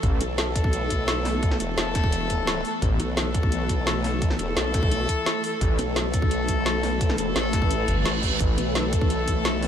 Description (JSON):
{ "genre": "dark technical drum and bass", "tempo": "172 BPM", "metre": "4/4", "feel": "straight", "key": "unclear", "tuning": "A4 = 440 Hz", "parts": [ { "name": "swarming drone", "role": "sustained chords", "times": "0.0-9.7 s", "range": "E3 to B4", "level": "-30 LUFS", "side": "equal", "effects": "built-in reverb, sidechain pumping" }, { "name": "wide detuned saw bass", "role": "bass", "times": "0.0-0.2, 2.8-3.0, 5.6-5.8, 7.9-8.6 s", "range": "G1 to A1", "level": "-24 LUFS", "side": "equal", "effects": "chorus, tube saturation" }, { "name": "drum and bass drum kit", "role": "drums", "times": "0.0-9.7 s", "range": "hi-hat, snare drum", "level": "-29 LUFS", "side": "equal", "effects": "none" }, { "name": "electronic kick drum", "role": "drums", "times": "0.0-9.3 s", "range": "none", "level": "-24 LUFS", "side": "equal", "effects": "none" }, { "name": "warm brass ensemble", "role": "stabs", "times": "0.2-9.7 s", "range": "A3 to A4", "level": "-29 LUFS", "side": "left 3 dB", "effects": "diffuse ambient delay" }, { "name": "formant-sweep wobble bass", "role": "bass", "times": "0.2-9.7 s", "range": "E1 to B1", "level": "-28 LUFS", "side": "equal", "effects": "chorus, tube saturation" }, { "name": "reverse cymbal", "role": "sound effects", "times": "7.8-8.4 s", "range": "none", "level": "-32 LUFS", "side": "right 6 dB", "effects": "none" } ], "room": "light reverb", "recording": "lossy compression artefacts", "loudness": "-21 LUFS", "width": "side -9 dB against mid", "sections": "0.0-9.7 A section", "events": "reverse cymbal 7.8-8.4", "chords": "0.0 A5", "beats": "| 0.03 0.38 0.73 1.08 | 1.43 1.78 2.12 2.47 | 2.82 3.17 3.52 3.87 | 4.22 4.57 4.92 5.26 | 5.61 5.96 6.31 6.66 | 7.01 7.36 7.71 8.05 | 8.40 8.75 9.10 9.45" }